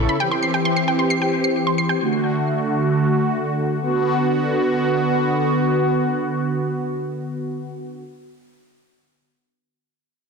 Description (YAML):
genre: pop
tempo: 133 BPM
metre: 4/4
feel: straight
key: unclear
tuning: A4 = 443 Hz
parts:
  - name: brassy analog pad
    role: sustained chords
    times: 0.0-8.0 s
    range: C#3 to A4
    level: -19 LUFS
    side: equal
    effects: chorus, phaser
  - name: wide unison pluck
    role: arpeggios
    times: 0.1-2.0 s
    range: G5 to C7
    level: -23 LUFS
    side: right 1 dB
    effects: ping-pong delay
room: moderate lush hall reverb, RT60 1.9 s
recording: dense, heavily limited modern master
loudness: -18 LUFS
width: side -4 dB against mid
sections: 0.0-3.8 A section; 3.8-7.4 B section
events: none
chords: 0.2 C; 2.0 D; 3.8 Bm